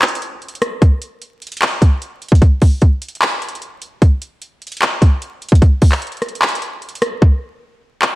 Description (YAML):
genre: hip hop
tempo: 150 BPM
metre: 4/4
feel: half-time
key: none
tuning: none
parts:
  - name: trap drum kit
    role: drums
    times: 0.0-8.1 s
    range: handclaps, hi-hat, kick drum, rim click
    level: -12 LUFS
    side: equal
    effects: vintage 12-bit sampler grit
room: light reverb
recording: vinyl crackle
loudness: -13 LUFS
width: side -19 dB against mid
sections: 0.0-8.2 A section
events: break 0.0-0.8; hi-hats muted 7.2-8.2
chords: none